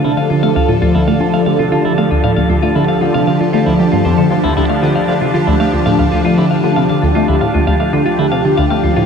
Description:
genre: ambient, sequencer-driven space music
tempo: 116 BPM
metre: 4/4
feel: straight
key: unclear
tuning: A4 = 440 Hz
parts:
  - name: phased analog pad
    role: sustained chords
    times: 0.0-9.1 s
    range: D3 to A5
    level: -14 LUFS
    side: left 1 dB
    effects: phaser, chorus
  - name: semi-hollow electric guitar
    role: arpeggios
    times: 0.0-9.1 s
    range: F3 to F5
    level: -19 LUFS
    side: moving between left 5 dB and right 2 dB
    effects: auto-pan, tape echo
  - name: resonant blip pluck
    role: riff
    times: 0.0-9.0 s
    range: D2 to A3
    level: -15 LUFS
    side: equal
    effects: analog chorus, tape echo
  - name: pulsing gated texture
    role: texture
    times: 0.2-9.1 s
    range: G4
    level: -24 LUFS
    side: right 4 dB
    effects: chorus, built-in reverb
room: wet huge ambient reverb, RT60 7.9 s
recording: dark, warm production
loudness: -11 LUFS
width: side -6 dB against mid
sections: 0.0-9.1 A section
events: filter sweep on synth arpeggio sound 0.0-9.1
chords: 0.0 Dm

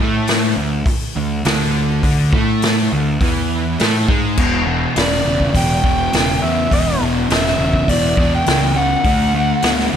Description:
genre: blues rock power trio and southern rock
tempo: 103 BPM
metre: 4/4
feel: straight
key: unclear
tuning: A4 = 437 Hz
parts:
  - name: fuzz guitar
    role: riff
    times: 0.0-10.0 s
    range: E2 to B3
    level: -18 LUFS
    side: equal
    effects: distortion
  - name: fuzz picked electric bass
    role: bass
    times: 0.0-10.0 s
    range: E1 to A2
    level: -20 LUFS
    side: equal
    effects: overdrive
  - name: vintage drum kit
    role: drums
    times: 0.3-9.9 s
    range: crash cymbal, hi-hat, kick drum, snare drum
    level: -19 LUFS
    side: equal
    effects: none
  - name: overdriven harmonica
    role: melody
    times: 5.0-9.9 s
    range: A4 to G5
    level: -19 LUFS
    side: equal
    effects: none
room: light reverb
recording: none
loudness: -14 LUFS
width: side -8 dB against mid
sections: 0.0-4.4 A section; 4.4-10.0 B section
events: harmonica solo 4.4-10.0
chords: 0.0 D5; 4.4 E5; 9.1 D

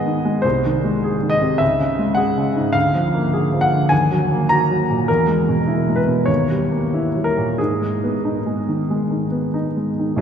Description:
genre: classical, romantic character piece for solo piano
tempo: 90-106 BPM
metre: 4/4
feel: rubato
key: unclear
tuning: A4 = 439 Hz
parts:
  - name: clear concert grand piano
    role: solo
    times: 0.0-10.2 s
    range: B1 to B5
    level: -16 LUFS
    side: equal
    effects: none
room: wet cathedral reverb, RT60 5.7 s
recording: recorded in a church or concert hall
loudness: -16 LUFS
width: side -8 dB against mid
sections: 0.0-10.2 A section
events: none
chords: 0.4 G#/B#; 1.6 C#m; 2.8 A#7/D; 3.9 D#m; 5.1 E; 6.3 D#7b9; 7.6 G#m

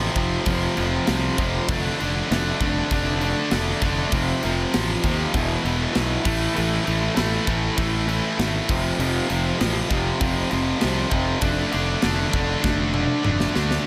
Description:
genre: heavy metal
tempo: 98 BPM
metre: 4/4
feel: straight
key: unclear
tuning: A4 = 440 Hz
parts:
  - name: distorted electric guitar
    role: riff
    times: 0.0-13.8 s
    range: E2 to D4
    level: -25 LUFS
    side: equal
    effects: overdrive
  - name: fuzz fingered electric bass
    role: bass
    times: 0.0-13.8 s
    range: E1 to D#2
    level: -28 LUFS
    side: equal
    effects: overdrive
  - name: tight metal drum kit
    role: drums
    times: 0.2-13.8 s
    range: crash cymbal, kick drum, snare drum, toms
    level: -29 LUFS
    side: equal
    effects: none
room: little or no reverb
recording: none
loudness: -22 LUFS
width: mono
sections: 0.0-13.9 A section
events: drum fill 12.6-13.9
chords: 0.0 F; 1.7 Dm/F; 4.1 F; 5.3 E5; 6.2 A5; 8.7 F; 11.4 Dm/F

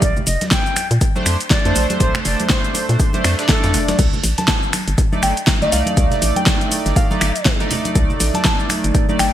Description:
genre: deep house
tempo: 121 BPM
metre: 4/4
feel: swing 58% on 16ths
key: C dorian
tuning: A4 = 440 Hz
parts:
  - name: reedy silver concert flute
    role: melody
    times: 0.0-3.8 s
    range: A4 to G5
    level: -25 LUFS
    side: equal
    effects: digital delay
  - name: hollow knocking FM bass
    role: bass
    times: 0.0-9.3 s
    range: F1 to Bb2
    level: -19 LUFS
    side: equal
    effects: sidechain pumping
  - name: deep house drum kit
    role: drums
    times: 0.0-9.3 s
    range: crash cymbal, finger snaps, hi-hat, shaker, snare drum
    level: -20 LUFS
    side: equal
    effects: studio reverb, gated reverb
  - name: dusty soul sampler-style drum kit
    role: drums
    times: 0.0-9.1 s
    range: hi-hat, snare drum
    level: -30 LUFS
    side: left 1 dB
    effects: none
  - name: electronic kick drum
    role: drums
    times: 0.0-9.1 s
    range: none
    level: -17 LUFS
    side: equal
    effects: studio reverb
  - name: congas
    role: percussion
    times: 0.2-9.2 s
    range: none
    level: -27 LUFS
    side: right 1 dB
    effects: none
  - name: chorused polysynth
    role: stabs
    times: 1.2-9.3 s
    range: A3 to D5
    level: -22 LUFS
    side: right 1 dB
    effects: sidechain pumping
  - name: soft synth bell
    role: melody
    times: 4.4-9.3 s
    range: Eb5 to A5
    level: -24 LUFS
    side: left 1 dB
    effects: chorus, ping-pong delay
room: light reverb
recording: bright 1980s-style digital production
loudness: -14 LUFS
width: side -12 dB against mid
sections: 0.0-9.3 A section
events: none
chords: 0.0 Bbmaj9; 4.0 Cm69 (rootless)

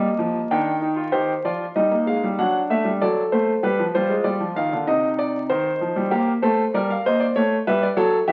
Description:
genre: classical, baroque-style 3-part fugue for grand piano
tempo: 96 BPM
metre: 4/4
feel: straight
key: C minor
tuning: A4 = 441 Hz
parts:
  - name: warm concert grand piano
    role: solo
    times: 0.0-8.3 s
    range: C3 to G5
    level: -21 LUFS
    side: equal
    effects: none
room: wet stone room reverb, RT60 1.1 s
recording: very old 78 rpm record, vinyl crackle, nothing above 7.8 kHz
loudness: -21 LUFS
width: mono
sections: 0.0-1.1 A section; 1.1-8.3 B section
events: none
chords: 0.0 Eb; 1.1 Cm/Eb; 2.4 D7/F#; 3.6 G; 4.9 Cm; 6.1 Gm; 7.4 A7

